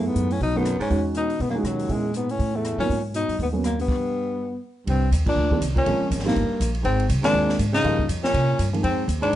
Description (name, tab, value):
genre	jazz, small-group swing and bop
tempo	242 BPM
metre	4/4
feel	swing 60% on 8ths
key	G# minor, C minor from 4.9 s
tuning	A4 = 439 Hz
part	breathy tenor saxophone	melody	0.0-9.4 s	F#3 to D#4	-25 LUFS	left 3 dB	plate reverb
part	growling baritone saxophone	second line	0.0-9.4 s	D#2 to Db3	-30 LUFS	right 4 dB	none
part	dark grand piano	accompaniment	0.0-8.8 s	Eb3 to Bb4	-27 LUFS	right 2 dB	none
part	upright bass	bass	0.0-9.4 s	G1 to C3	-25 LUFS	equal	none
part	open jazz drum kit	drums	0.2-9.4 s	crash cymbal, hi-hat, kick drum, ride cymbal, rim click, snare drum	-30 LUFS	equal	none
room	moderate club reverb, RT60 0.5 s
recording	nothing above 10.7 kHz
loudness	-20 LUFS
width	side -12 dB against mid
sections	0.0-4.9 A section; 4.9-9.4 B section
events	stop 3.9-4.9; band accent 5.2, 7.2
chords	0.4 B7b9; 0.9 Emaj13; 1.9 A#m7b5; 2.4 A5; 2.9 G#madd9; 3.9 N.C.; 4.9 Cm9; 5.9 Bbm7; 6.3 Gm; 6.8 Ab6; 7.8 Gm7b5; 8.3 C5; 8.8 Fm7